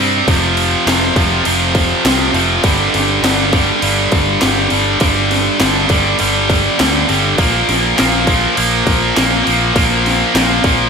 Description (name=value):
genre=hard rock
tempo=101 BPM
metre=4/4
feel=straight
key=unclear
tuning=A4 = 440 Hz
part: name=high-gain distorted guitar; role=riff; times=0.0-10.9 s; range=F2 to C4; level=-16 LUFS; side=left 11 dB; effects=distortion, slapback echo
part: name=tight distorted guitar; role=riff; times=0.0-10.9 s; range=F2 to C4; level=-15 LUFS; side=right 10 dB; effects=distortion
part: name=picked electric bass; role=bass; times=0.0-10.9 s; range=F1 to G2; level=-20 LUFS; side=equal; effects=none
part: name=drum and bass drum kit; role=drums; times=0.3-10.8 s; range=crash cymbal, kick drum, snare drum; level=-17 LUFS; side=left 1 dB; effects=none
room=moderate lush hall reverb, RT60 1.9 s, digital ambience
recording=big arena sound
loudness=-11 LUFS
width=side -6 dB against mid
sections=0.0-10.9 A section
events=none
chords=0.3 F5; 2.6 G5; 7.4 Bb5